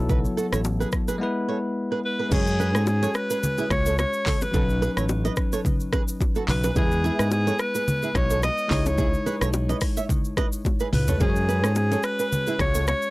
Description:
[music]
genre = afrobeats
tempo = 108 BPM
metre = 4/4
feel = swing 55% on 16ths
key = F# dorian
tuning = A4 = 438 Hz
[part]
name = bell-like tine electric piano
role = accompaniment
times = 0.0-13.1 s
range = F#3 to C#5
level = -30 LUFS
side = left 2 dB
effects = none
[part]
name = modern bright fingered electric bass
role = bass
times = 0.0-12.9 s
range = A1 to G#2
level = -24 LUFS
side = equal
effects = none
[part]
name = flamenco guitar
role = riff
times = 0.1-12.8 s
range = C#4 to E5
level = -30 LUFS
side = right 5 dB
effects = analog delay
[part]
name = afro-pop drum kit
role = drums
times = 0.1-13.1 s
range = crash cymbal, handclaps, hi-hat, kick drum, rim click, shaker, toms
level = -26 LUFS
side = equal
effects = none
[part]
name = congas and bongos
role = percussion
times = 0.1-13.0 s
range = none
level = -30 LUFS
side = left 1 dB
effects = none
[part]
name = breathy alto saxophone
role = melody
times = 2.0-13.1 s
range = G#4 to D#5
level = -27 LUFS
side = equal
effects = analog delay
[sound]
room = little or no reverb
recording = dry, gritty hardware recording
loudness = -21 LUFS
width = side -20 dB against mid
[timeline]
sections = 0.0-2.3 A section; 2.3-13.1 B section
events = break 1.2-2.3; drum fill 10.7-11.2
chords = 0.0 B7sus4; 1.2 E; 2.3 F#sus2; 4.5 Badd9; 6.8 E; 8.7 C#madd9; 11.2 F#sus2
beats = | 0.10 0.65 1.21 1.76 | 2.32 2.87 3.43 3.98 | 4.54 5.09 5.65 6.21 | 6.76 7.32 7.87 8.43 | 8.98 9.54 10.10 10.65 | 11.21 11.76 12.32 12.87

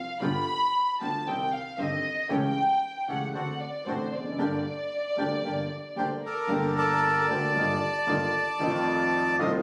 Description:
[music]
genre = tango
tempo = 114 BPM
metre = 4/4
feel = rubato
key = G minor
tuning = A4 = 440 Hz
[part]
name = dark studio violin section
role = second line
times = 0.0-9.5 s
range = G4 to B5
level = -33 LUFS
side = equal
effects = none
[part]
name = clear baby grand piano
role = accompaniment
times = 0.2-9.6 s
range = G1 to G4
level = -34 LUFS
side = equal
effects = none
[part]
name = bandoneon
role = stabs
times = 0.2-9.6 s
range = G3 to A5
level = -39 LUFS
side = equal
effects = none
[part]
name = clear double bass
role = bass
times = 0.2-9.6 s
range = F1 to F2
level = -38 LUFS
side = equal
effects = none
[part]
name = bandoneon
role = melody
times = 6.0-9.5 s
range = A4 to A5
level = -28 LUFS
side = equal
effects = none
[sound]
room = moderate large studio reverb, RT60 1.0 s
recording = recorded on a phone in the room, club reverb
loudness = -28 LUFS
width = mono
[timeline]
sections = 0.0-6.5 A section; 6.5-9.6 B section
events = violin section solo 0.0-6.5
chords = 0.2 G7; 1.3 Cm; 2.3 A7/C#; 3.3 D7; 4.4 Gmadd9; 7.6 Ebadd9/G; 8.6 F7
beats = | 0.20 0.73 1.25 1.77 | 2.29 2.81 3.33 3.85 | 4.38 4.90 5.43 5.96 | 6.50 7.03 7.55 8.08 | 8.61 9.13

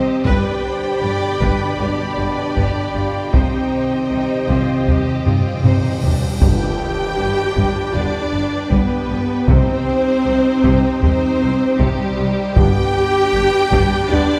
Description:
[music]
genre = cinematic, epic orchestral film score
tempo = 78 BPM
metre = 4/4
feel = straight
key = unclear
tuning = A4 = 440 Hz
[part]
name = warm symphonic violin section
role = melody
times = 0.0-14.4 s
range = G4 to G5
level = -33 LUFS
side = equal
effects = none
[part]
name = rich symphonic violin section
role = second line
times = 0.0-14.4 s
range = D4 to G5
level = -29 LUFS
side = equal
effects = none
[part]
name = warm symphonic viola section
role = accompaniment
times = 0.0-14.4 s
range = G3 to Eb5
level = -27 LUFS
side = equal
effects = none
[part]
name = bright trombone section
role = sustained chords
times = 0.0-14.4 s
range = B2 to C4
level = -31 LUFS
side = equal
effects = none
[part]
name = mellow French horn section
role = sustained chords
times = 0.0-14.4 s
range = G3 to G4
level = -23 LUFS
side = equal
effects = none
[part]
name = rich studio string section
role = sustained chords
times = 0.0-14.4 s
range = C4 to B5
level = -29 LUFS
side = equal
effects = none
[part]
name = clear studio double bass section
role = bass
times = 0.3-14.2 s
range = G1 to C2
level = -26 LUFS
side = equal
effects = none
[part]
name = rich symphonic cello section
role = bass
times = 0.3-14.2 s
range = G2 to C3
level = -28 LUFS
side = equal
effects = none
[part]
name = taiko ensemble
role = drums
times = 0.3-14.4 s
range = none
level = -21 LUFS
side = equal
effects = none
[part]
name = timpani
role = percussion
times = 3.3-6.4, 12.6-13.7 s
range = G2 to C3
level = -27 LUFS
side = equal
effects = none
[part]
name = cymbal swell and impact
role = sound effects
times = 5.2-9.5 s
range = none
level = -34 LUFS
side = equal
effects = none
[part]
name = tam-tam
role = percussion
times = 6.4-9.5 s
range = none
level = -33 LUFS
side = equal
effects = none
[sound]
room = wet scoring stage reverb, RT60 1.6 s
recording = heard from further back in the room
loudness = -17 LUFS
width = mono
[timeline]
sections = 0.0-6.4 A section; 6.4-14.4 A section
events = timpani fill 3.3-6.4; cymbal swell 5.2-6.4; drum fill 5.3-6.4; band accent 6.4-7.2; impact 6.4-9.5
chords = 0.3 G; 3.3 Cm; 6.4 G; 9.5 Cm; 12.6 G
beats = | 0.27 1.03 1.80 2.57 | 3.34 4.11 4.88 5.65 | 6.42 7.19 7.96 8.73 | 9.50 10.27 11.03 11.80 | 12.57 13.34 14.11

